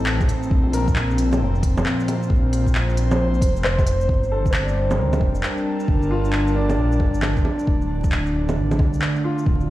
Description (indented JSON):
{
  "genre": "future garage",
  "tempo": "134 BPM",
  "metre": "4/4",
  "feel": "swing 64% on 16ths",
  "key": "G minor",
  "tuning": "A4 = 441 Hz",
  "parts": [
    { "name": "bright upright piano", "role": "accompaniment", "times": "0.0-9.7 s", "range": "D4 to D5", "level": "-30 LUFS", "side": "left 2 dB", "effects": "sidechain pumping, dub echo" },
    { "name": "airy breathy pad", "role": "sustained chords", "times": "0.0-9.7 s", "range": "A2 to A5", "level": "-23 LUFS", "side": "equal", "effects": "chorus, sidechain pumping" },
    { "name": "dark detuned saw bass", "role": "bass", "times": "0.0-9.7 s", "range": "D1 to D2", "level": "-22 LUFS", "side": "equal", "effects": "tube saturation, sidechain pumping" },
    { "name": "organic electronic drum kit", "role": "drums", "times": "0.1-9.7 s", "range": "bongos, handclaps, hi-hat, shaker", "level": "-26 LUFS", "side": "equal", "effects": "none" },
    { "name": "electronic kick drum", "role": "drums", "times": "0.2-9.6 s", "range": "none", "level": "-20 LUFS", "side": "equal", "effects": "none" }
  ],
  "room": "light reverb",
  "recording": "played on a big sound system in a bare room, stone room reverb, vinyl crackle",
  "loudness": "-18 LUFS",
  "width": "side -15 dB against mid",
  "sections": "0.0-4.1 A section; 4.1-9.7 B section",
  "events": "none",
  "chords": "0.0 Adim; 0.5 Bbsus2; 4.1 Gm7; 7.7 Dm",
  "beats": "0.06 | 0.51 0.96 1.41 1.85 | 2.30 2.75 3.20 3.64 | 4.09 4.54 4.99 5.44 | 5.88 6.33 6.78 7.23 | 7.67 8.12 8.57 9.02 | 9.46"
}